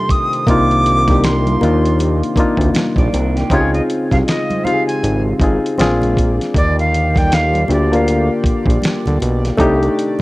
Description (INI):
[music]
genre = R&B, neo-soul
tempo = 79 BPM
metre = 4/4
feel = swing 60% on 16ths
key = unclear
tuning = A4 = 440 Hz
[part]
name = jazz flute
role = melody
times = 0.0-8.3 s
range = Db5 to Eb6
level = -19 LUFS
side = equal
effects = cassette tape, tape echo
[part]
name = barky reed electric piano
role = accompaniment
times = 0.0-10.2 s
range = A3 to Bb4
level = -17 LUFS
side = left 2 dB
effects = cassette tape
[part]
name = chorused pulse-width pad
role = sustained chords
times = 0.0-10.2 s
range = C3 to D5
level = -26 LUFS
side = right 1 dB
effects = cassette tape
[part]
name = dusty soul sampler-style drum kit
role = drums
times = 0.1-10.2 s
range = hi-hat, kick drum, snare drum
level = -18 LUFS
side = equal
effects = cassette tape
[part]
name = congas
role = percussion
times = 0.1-10.2 s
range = none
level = -28 LUFS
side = right 2 dB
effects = none
[part]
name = fat analog bass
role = bass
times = 0.5-9.9 s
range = Ab1 to Eb2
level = -17 LUFS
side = equal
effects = none
[part]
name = electric guitar through a small old amp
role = second line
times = 3.0-3.7 s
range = Bb3 to D5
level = -26 LUFS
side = right 4 dB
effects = cassette tape
[sound]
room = little or no reverb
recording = home recording on cassette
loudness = -12 LUFS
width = side -19 dB against mid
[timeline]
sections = 0.0-3.5 A section; 3.5-10.2 B section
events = flute solo 3.5-10.2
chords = 0.5 Cm11; 3.5 Dbmaj7; 5.8 Bb9; 6.5 Ebmaj9; 9.6 Cm69